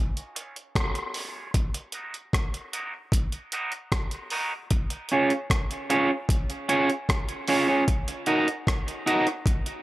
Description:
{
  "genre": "dub reggae",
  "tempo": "76 BPM",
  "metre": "4/4",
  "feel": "straight",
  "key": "Db major",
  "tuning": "A4 = 440 Hz",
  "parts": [
    { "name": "breakbeat sampler-style drum kit", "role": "drums", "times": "0.2-9.8 s", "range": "hi-hat, kick drum, rim click", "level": "-26 LUFS", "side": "equal", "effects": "none" },
    { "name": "electric guitar at the edge of break-up", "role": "accompaniment", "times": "0.4-9.3 s", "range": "Db4 to Eb5", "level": "-25 LUFS", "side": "right 2 dB", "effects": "warbly pitch drift, high-pass filter, low-pass filter, tape echo" }
  ],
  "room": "moderate spring reverb, RT60 2.5 s",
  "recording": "none",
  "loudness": "-24 LUFS",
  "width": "side -16 dB against mid",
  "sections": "0.0-9.8 A section",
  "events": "filter sweep on clean electric guitar 0.0-4.7",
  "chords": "0.0 Db; 1.5 Ebm; 4.7 Db; 7.9 Ebm",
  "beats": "0.76 | 1.55 2.34 3.13 3.92 | 4.71 5.50 6.30 7.09 | 7.88 8.67 9.46"
}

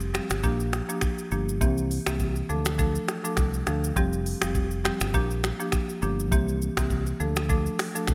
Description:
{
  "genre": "afrobeats",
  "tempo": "102 BPM",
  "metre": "4/4",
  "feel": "swing 55% on 16ths",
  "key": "unclear",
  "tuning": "A4 = 441 Hz",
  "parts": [
    { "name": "fingered electric bass", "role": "bass", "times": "0.0-8.1 s", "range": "F1 to D2", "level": "-31 LUFS", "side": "equal", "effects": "none" },
    { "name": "afro-pop drum kit", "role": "drums", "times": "0.0-8.1 s", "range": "finger snaps, hi-hat, kick drum, rim click, shaker", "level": "-30 LUFS", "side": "equal", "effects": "gated reverb" },
    { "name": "marimba with medium mallets", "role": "accompaniment", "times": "0.1-8.1 s", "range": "E3 to A4", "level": "-32 LUFS", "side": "equal", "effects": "none" }
  ],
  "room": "light reverb",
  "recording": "bright 1980s-style digital production",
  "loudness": "-27 LUFS",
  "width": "mono",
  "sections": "0.0-8.1 A section",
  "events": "none",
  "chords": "0.4 Bb6; 1.6 C7; 2.5 Dm; 4.0 Fsus2; 5.1 Bb6; 6.3 C7; 7.2 Dm",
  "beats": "0.44 1.02 | 1.61 2.20 2.79 3.38 | 3.96 4.55 5.14 5.73 | 6.32 6.91 7.50 8.08"
}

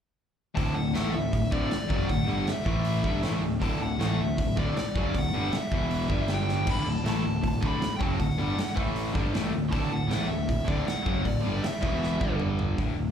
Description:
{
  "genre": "punk rock",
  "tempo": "157 BPM",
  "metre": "4/4",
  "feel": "straight",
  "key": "D major",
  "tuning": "A4 = 440 Hz",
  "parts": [
    { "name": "distorted electric guitar", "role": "riff", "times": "0.5-13.1 s", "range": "D2 to A3", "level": "-32 LUFS", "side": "left 8 dB", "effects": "distortion" },
    { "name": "dark smooth lead guitar", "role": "melody", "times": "0.6-12.4 s", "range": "D5 to B5", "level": "-34 LUFS", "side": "equal", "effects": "overdrive, slapback echo" },
    { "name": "distorted electric guitar", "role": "riff", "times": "0.6-12.8 s", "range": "D2 to A3", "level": "-36 LUFS", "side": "right 1 dB", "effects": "overdrive, slapback echo" },
    { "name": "overdriven electric guitar", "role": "riff", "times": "0.6-12.8 s", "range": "D2 to A3", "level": "-35 LUFS", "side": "right 9 dB", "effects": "slapback echo" },
    { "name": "fuzz picked electric bass", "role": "bass", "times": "0.6-13.1 s", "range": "D1 to A1", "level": "-31 LUFS", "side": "right 1 dB", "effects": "overdrive" },
    { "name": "big rock drum kit", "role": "drums", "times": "0.6-12.9 s", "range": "crash cymbal, hi-hat, kick drum, snare drum, toms", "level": "-30 LUFS", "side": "equal", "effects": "none" }
  ],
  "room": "studio ambience",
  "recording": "live gig heard through the venue's PA, club reverb",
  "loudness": "-25 LUFS",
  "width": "side -8 dB against mid",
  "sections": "0.6-12.8 A section",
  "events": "drum fill 6.5, 12.0-12.8",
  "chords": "0.6 D; 2.7 A5; 3.0 D; 5.7 E5; 6.1 G5; 6.7 D; 8.8 A5; 9.2 D; 11.8 E5; 12.2 G5",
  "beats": "| 0.56 0.94 1.32 1.71 | 2.09 2.47 2.85 3.23 | 3.62 4.00 4.38 4.76 | 5.14 5.53 5.91 6.29 | 6.67 7.05 7.43 7.82 | 8.20 8.58 8.96 9.34 | 9.72 10.10 10.48 10.87 | 11.25 11.63 12.01 12.39 | 12.77"
}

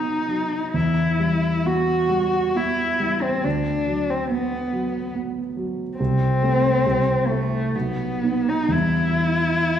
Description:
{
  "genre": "classical, romantic duo for cello and grand piano",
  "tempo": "57-73 BPM",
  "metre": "3/4",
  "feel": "rubato",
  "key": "E minor",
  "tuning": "A4 = 440 Hz",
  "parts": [
    { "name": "warm cello", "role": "melody", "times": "0.0-9.8 s", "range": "A3 to F#4", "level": "-22 LUFS", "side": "left 1 dB", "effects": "none" },
    { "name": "dark concert grand piano", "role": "accompaniment", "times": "0.0-9.8 s", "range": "B1 to E4", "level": "-23 LUFS", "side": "right 1 dB", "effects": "none" }
  ],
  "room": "wet concert hall reverb, RT60 1.9 s",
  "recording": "studio reverb",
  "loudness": "-19 LUFS",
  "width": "side -9 dB against mid",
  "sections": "0.0-9.8 A section",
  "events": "none",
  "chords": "0.0 B; 0.7 Em; 3.5 Bm/D; 6.0 Am/C; 6.8 C6; 7.7 B; 8.7 Em",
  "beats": "| 0.75 1.66 2.56 | 3.45 4.31 5.14 | 5.99 6.84 7.74 | 8.72 9.76"
}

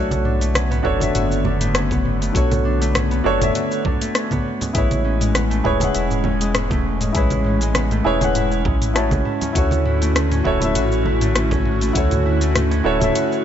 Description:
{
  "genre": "sunset chillout",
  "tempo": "100 BPM",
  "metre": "4/4",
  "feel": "swing 54% on 16ths",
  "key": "B dorian",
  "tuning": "A4 = 440 Hz",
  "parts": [
    { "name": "warm baby grand piano", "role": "accompaniment", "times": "0.0-13.4 s", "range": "D3 to A5", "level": "-22 LUFS", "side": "equal", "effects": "auto-pan, tape echo" },
    { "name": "airy breathy pad", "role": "sustained chords", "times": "0.0-13.4 s", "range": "D3 to F#4", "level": "-25 LUFS", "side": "left 1 dB", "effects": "chorus" },
    { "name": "Celtic harp", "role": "arpeggios", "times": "0.0-13.4 s", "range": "G#3 to A4", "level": "-26 LUFS", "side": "equal", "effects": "tape echo" },
    { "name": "round analog bass", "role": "bass", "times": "0.0-13.1 s", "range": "D1 to D2", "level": "-21 LUFS", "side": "equal", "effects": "tube saturation" },
    { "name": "smooth R&B drum kit", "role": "drums", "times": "0.1-13.4 s", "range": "hi-hat, rim click, shaker, toms", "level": "-25 LUFS", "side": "equal", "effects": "none" },
    { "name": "congas", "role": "percussion", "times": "0.1-13.1 s", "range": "none", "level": "-28 LUFS", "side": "right 2 dB", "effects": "none" },
    { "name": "electronic kick drum", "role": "drums", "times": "0.8-12.1 s", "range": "none", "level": "-22 LUFS", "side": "equal", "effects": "none" }
  ],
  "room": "light reverb",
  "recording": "nothing above 7.8 kHz",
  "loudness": "-16 LUFS",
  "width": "side -9 dB against mid",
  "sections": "0.0-13.4 A section",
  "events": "none",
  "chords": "0.0 Bm9; 4.5 Amaj9; 9.3 Dmaj9",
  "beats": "0.55 1.15 1.75 | 2.35 2.95 3.55 4.15 | 4.75 5.35 5.95 6.55 | 7.15 7.75 8.35 8.95 | 9.55 10.15 10.75 11.35 | 11.95 12.55 13.15"
}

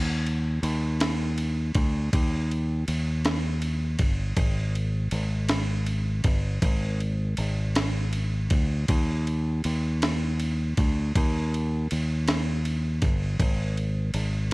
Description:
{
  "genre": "six-eight pop ballad",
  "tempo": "53 BPM (dotted quarters)",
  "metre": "6/8",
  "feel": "straight",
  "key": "Eb major",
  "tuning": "A4 = 442 Hz",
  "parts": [
    { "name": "fingered electric bass", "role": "bass", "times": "0.0-14.5 s", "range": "G1 to Eb2", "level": "-25 LUFS", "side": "equal", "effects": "none" },
    { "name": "breakbeat sampler-style drum kit", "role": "drums", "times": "0.3-14.5 s", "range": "kick drum, ride cymbal, snare drum", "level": "-28 LUFS", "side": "equal", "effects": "none" }
  ],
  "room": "digital ambience",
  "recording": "worn, warbling old tape, cassette tape, warbly pitch drift",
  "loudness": "-24 LUFS",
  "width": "side -23 dB against mid",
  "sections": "0.0-14.5 A section",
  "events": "none",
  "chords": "none",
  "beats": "1.01 | 2.13 3.25 | 4.37 5.49 | 6.62 7.75 | 8.88 10.02 | 11.15 12.27 | 13.39 14.51"
}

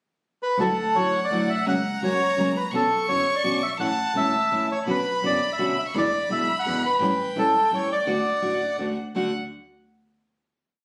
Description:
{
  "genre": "tango",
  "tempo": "168 BPM",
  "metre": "3/4",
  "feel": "rubato",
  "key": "D major",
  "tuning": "A4 = 440 Hz",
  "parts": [
    { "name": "bandoneon", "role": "melody", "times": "0.4-8.8 s", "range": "A4 to F#5", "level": "-25 LUFS", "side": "equal", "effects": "none" },
    { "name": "clear violin", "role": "second line", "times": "0.6-9.3 s", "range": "F#5 to C#6", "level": "-33 LUFS", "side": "equal", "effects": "slapback echo" },
    { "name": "nylon-string guitar", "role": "accompaniment", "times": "0.6-9.3 s", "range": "B2 to F#4", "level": "-30 LUFS", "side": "equal", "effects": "none" },
    { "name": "rich double bass", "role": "bass", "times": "0.6-9.3 s", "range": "E1 to E2", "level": "-36 LUFS", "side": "equal", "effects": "none" }
  ],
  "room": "moderate club reverb, RT60 0.6 s",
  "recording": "recorded on a phone in the room, studio reverb",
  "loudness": "-24 LUFS",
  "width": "mono",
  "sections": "0.0-0.6 pickup bar; 0.6-9.2 A section; 9.2-10.2 final chord",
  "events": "none",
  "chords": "0.0 N.C.; 0.6 Dadd9; 1.7 F#/C#; 2.7 Bmadd9; 3.8 A; 4.9 Bmadd9; 5.9 E7; 7.0 A7; 8.1 D",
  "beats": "0.23 | 0.59 0.95 1.31 | 1.66 2.02 2.37 | 2.72 3.08 3.43 | 3.79 4.15 4.51 | 4.87 5.23 5.59 | 5.95 6.30 6.66 | 7.01 7.37 7.72 | 8.07 8.43 8.79 | 9.15"
}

